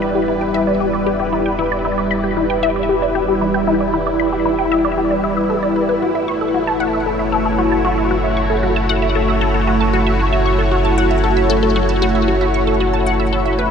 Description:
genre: ambient, sequencer-driven space music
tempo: 115 BPM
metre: 4/4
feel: straight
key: unclear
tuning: A4 = 440 Hz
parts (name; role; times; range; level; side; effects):
- lush unison pad; sustained chords; 0.0-13.7 s; G3 to D5; -17 LUFS; right 1 dB; chorus, phaser, shimmer reverb
- resonant blip pluck; riff; 0.0-13.7 s; E4 to C#6; -19 LUFS; left 2 dB; phaser, ping-pong delay, shimmer reverb
- warm sub bass; bass; 0.0-13.7 s; E1 to F#1; -23 LUFS; equal; none
room: wet huge ambient reverb, RT60 8.5 s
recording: cassette tape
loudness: -14 LUFS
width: side -7 dB against mid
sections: 0.0-13.7 A section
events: fade-in on sub bass 0.0-13.7; filter sweep on synth arpeggio sound 0.0-13.7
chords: 0.0 Em7; 6.0 F#m7

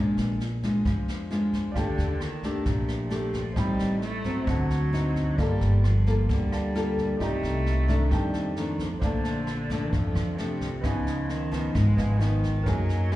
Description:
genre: bossa nova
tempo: 132 BPM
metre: 4/4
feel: straight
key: G minor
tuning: A4 = 440 Hz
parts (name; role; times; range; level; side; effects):
- nylon-string guitar; accompaniment; 0.0-13.2 s; F2 to A4; -28 LUFS; left 1 dB; slapback echo
- upright bass; bass; 0.0-13.2 s; G1 to Gb2; -27 LUFS; equal; none
- jazz brush drum kit; drums; 0.2-13.2 s; kick drum, rim click, snare drum; -33 LUFS; equal; none
- warm concert grand piano; accompaniment; 1.7-13.2 s; Eb4 to B5; -38 LUFS; right 3 dB; slapback echo
- warm cello; second line; 1.8-13.2 s; C3 to A3; -32 LUFS; right 2 dB; slapback echo
room: light reverb, small room ambience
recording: live gig heard through the venue's PA, club reverb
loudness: -24 LUFS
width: side -16 dB against mid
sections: 0.0-9.0 A section; 9.0-13.2 B section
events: none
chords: 0.0 Bb7; 1.8 Ebmaj9#11; 3.6 Am7b5; 4.5 D7b9; 5.4 Gm9; 7.2 Cm7; 8.1 F13; 9.0 Bbmaj7; 10.8 Db9

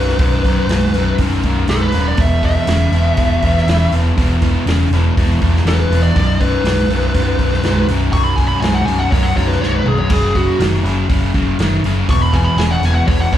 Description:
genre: blues rock power trio and southern rock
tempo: 121 BPM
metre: 4/4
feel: straight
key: unclear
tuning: A4 = 443 Hz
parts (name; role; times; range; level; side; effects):
- fuzz lead guitar; melody; 0.0-13.4 s; F#4 to C#6; -20 LUFS; left 1 dB; distortion, slapback echo
- overdriven electric guitar; riff; 0.0-13.4 s; B1 to D#3; -18 LUFS; left 1 dB; none
- picked electric bass; bass; 0.0-13.4 s; B0 to F#1; -16 LUFS; equal; none
- vintage drum kit; drums; 0.1-13.4 s; hi-hat, kick drum, snare drum, splash cymbal, toms; -20 LUFS; equal; none
room: studio reverb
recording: live gig heard through the venue's PA, club reverb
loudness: -12 LUFS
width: side -11 dB against mid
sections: 0.0-13.4 A section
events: drum fill 9.6-10.1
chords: 0.0 B5; 2.2 E5; 6.2 B5; 10.1 F#5; 12.1 E5

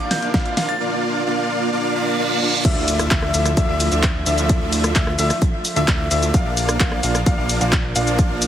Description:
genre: EDM, festival progressive house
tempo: 130 BPM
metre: 4/4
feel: straight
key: unclear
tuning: A4 = 445 Hz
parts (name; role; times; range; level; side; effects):
- glassy synth bell; melody; 0.0-0.8 s; G6 to A6; -31 LUFS; right 1 dB; chorus, digital delay
- rich studio string section; sustained chords; 0.0-8.5 s; D3 to E5; -29 LUFS; right 1 dB; sidechain pumping
- clear baby grand piano; arpeggios; 0.0-8.5 s; E5 to F5; -26 LUFS; left 2 dB; sidechain pumping, digital delay
- dense compressed supersaw; riff; 0.0-8.5 s; A3 to F5; -23 LUFS; right 1 dB; sidechain pumping, digital delay
- fat analog bass; bass; 0.0-8.5 s; Bb1 to D2; -23 LUFS; equal; tube saturation, sidechain pumping, high-pass filter
- riser, reverse cymbal and impact; sound effects; 0.0-4.5 s; none; -28 LUFS; right 3 dB; none
- big-room dance drum kit; drums; 0.1-8.5 s; crash cymbal, handclaps, hi-hat, rim click, shaker, snare drum; -24 LUFS; left 1 dB; none
- electronic kick drum; drums; 0.3-8.3 s; none; -19 LUFS; equal; none
room: light reverb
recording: heavily compressed radio sound, multiband compression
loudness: -16 LUFS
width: side -10 dB against mid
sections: 0.0-2.6 A section; 2.6-8.5 B section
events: build-up 0.0-2.6; drum fill 0.0-0.8; riser 0.0-0.8; reverse cymbal 1.9-2.6; drop 2.6-8.5; impact 2.6-4.5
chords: 0.0 Bb; 2.6 Dmadd9; 6.3 Bb

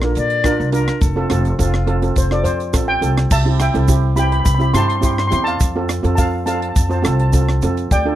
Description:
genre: calypso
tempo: 105 BPM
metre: 4/4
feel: straight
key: C major from 3.3 s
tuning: A4 = 444 Hz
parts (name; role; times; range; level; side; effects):
- steel pan; melody; 0.0-8.2 s; A4 to C6; -21 LUFS; left 1 dB; none
- steel pan; accompaniment; 0.0-8.2 s; C4 to C5; -21 LUFS; right 3 dB; none
- upright bass; bass; 0.0-8.2 s; F1 to Bb2; -18 LUFS; equal; none
- tight funk drum kit; drums; 0.0-8.1 s; crash cymbal, hi-hat, kick drum, rim click; -19 LUFS; equal; none
- silver concert flute; second line; 0.2-2.0 s; F4 to D5; -22 LUFS; left 5 dB; none
- tube shaker; percussion; 0.2-8.1 s; none; -32 LUFS; right 9 dB; none
room: small room ambience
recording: dry, close 1970s-style studio recording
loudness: -14 LUFS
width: side -13 dB against mid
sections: 0.0-3.3 A section; 3.3-8.2 B section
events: steel pan solo 0.0-3.3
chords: 0.0 Bb; 1.0 F; 3.3 C; 5.6 F

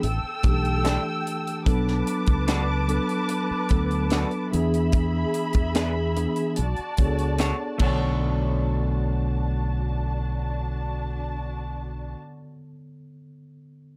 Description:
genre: lush 1970s-style soul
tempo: 73 BPM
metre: 4/4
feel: straight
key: B minor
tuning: A4 = 440 Hz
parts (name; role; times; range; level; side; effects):
- muted studio string section; second line; 0.0-12.1 s; D4 to E6; -33 LUFS; equal; plate reverb
- mellow tine electric piano; accompaniment; 0.0-14.0 s; D3 to C#5; -31 LUFS; equal; plate reverb
- fingered electric bass; bass; 0.0-12.1 s; A1 to E2; -28 LUFS; equal; none
- tight funk drum kit; drums; 0.0-8.0 s; crash cymbal, hi-hat, kick drum, snare drum; -27 LUFS; equal; none
- electric guitar through a small old amp; riff; 0.8-12.2 s; G3 to C#5; -35 LUFS; equal; none
room: light reverb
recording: none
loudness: -25 LUFS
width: mono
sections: 0.0-8.2 A section; 8.2-11.5 B section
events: none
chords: 0.0 A7sus4; 1.7 Bm7; 4.5 E7; 6.6 Bm9

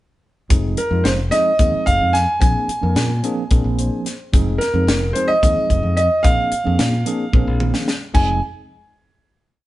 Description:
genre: electric jazz fusion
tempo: 220 BPM (eighths)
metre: 7/8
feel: straight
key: F dorian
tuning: A4 = 444 Hz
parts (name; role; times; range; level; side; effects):
- tine electric piano; accompaniment; 0.5-8.4 s; F3 to C5; -24 LUFS; right 1 dB; medium stereo tremolo
- modern bright fingered electric bass; bass; 0.5-8.4 s; F1 to Bb2; -20 LUFS; equal; none
- tight funk drum kit; drums; 0.5-8.3 s; crash cymbal, hi-hat, kick drum, snare drum, toms; -18 LUFS; equal; none
- warm concert grand piano; melody; 0.8-8.4 s; Bb4 to Ab5; -19 LUFS; right 1 dB; none
room: light reverb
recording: band playing live in one room, nothing above 11.0 kHz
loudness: -15 LUFS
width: side -16 dB against mid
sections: 0.5-8.1 A section; 8.1-9.7 final chord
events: tine electric piano fill 3.5-4.3; drum fill 7.3-8.1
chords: 0.5 Fm7; 2.4 Bb9; 4.3 Fm7; 6.2 Bb9; 8.1 Fm7

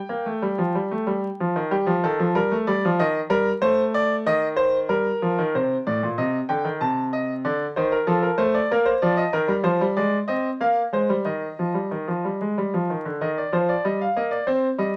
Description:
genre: classical, baroque-style two-part invention for grand piano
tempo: 94 BPM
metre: 3/4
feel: straight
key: G minor, Eb major from 9.3 s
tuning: A4 = 441 Hz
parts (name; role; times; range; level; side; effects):
- bright grand piano; solo; 0.0-15.0 s; A2 to A5; -23 LUFS; equal; none
room: moderate studio reverb, RT60 0.8 s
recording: vinyl crackle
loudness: -23 LUFS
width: mono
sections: 0.0-1.7 A section; 1.7-5.5 B section; 5.5-13.2 A section; 13.2-15.0 B section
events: none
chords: 0.0 N.C.; 1.7 Gm; 3.0 Eb; 3.6 Adim; 4.9 Gm; 5.5 Cm; 6.8 Adim/C; 7.5 Dm; 8.7 Bb; 9.3 Eb; 10.0 Ab; 10.6 Bb5; 11.3 Eb

